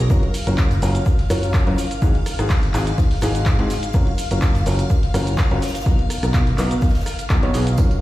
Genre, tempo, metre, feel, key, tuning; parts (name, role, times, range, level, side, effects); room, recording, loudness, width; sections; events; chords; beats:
piano house; 125 BPM; 4/4; swing 54% on 16ths; A4 = 441 Hz
string machine, violins; sustained chords; 0.0-8.0 s; A#4 to A#5; -31 LUFS; left 2 dB; ensemble chorus, sidechain pumping
fingered electric bass; bass; 0.0-7.9 s; F#1 to G#2; -21 LUFS; equal; sidechain pumping
clear upright piano; riff; 0.1-7.9 s; G#2 to C#5; -24 LUFS; equal; vintage 12-bit sampler grit, sidechain pumping, tape echo
electronic kick drum; drums; 0.1-7.9 s; -19 LUFS; equal
punchy analog drum machine; drums; 0.1-8.0 s; handclaps, hi-hat, rim click, shaker; -29 LUFS; equal
swinging big-band drum kit; drums; 0.1-7.9 s; hi-hat, shaker, snare drum; -40 LUFS; equal; sidechain pumping on hats, high-pass filter on hats, high-pass filter on snare, sidechain pumping on perc, high-pass filter on perc, high-pass filter on room
tambourine; percussion; 7.8-8.0 s; -39 LUFS; right 5 dB
light reverb, small room ambience; played on a big sound system in a bare room, stone room reverb; -16 LUFS; side -16 dB against mid
0.0-8.0 A section
0.1 F#maj7; 1.8 G#7; 3.9 F#maj7; 5.6 Bmaj7
| 0.10 0.58 1.06 1.54 | 2.02 2.50 2.98 3.46 | 3.94 4.42 4.90 5.38 | 5.86 6.34 6.82 7.30 | 7.78